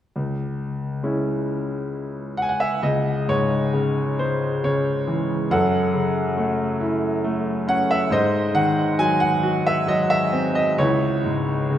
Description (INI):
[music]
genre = classical, lyrical solo piano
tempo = 68 BPM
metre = 3/4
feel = rubato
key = C# harmonic minor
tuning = A4 = 440 Hz
[part]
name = bright grand piano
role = solo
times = 0.2-11.8 s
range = C#2 to G#5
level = -19 LUFS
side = equal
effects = none
[sound]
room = wet cathedral reverb, RT60 4.1 s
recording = recorded in a church or concert hall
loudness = -19 LUFS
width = side -10 dB against mid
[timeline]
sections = 0.2-2.8 A section; 2.8-11.8 B section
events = none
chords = 0.2 C#m; 5.5 F#m7; 8.1 G#7; 10.8 C#m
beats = | 0.16 1.04 1.92 | 2.83 3.75 4.64 | 5.51 6.37 7.24 | 8.11 8.98 9.87 | 10.78 11.70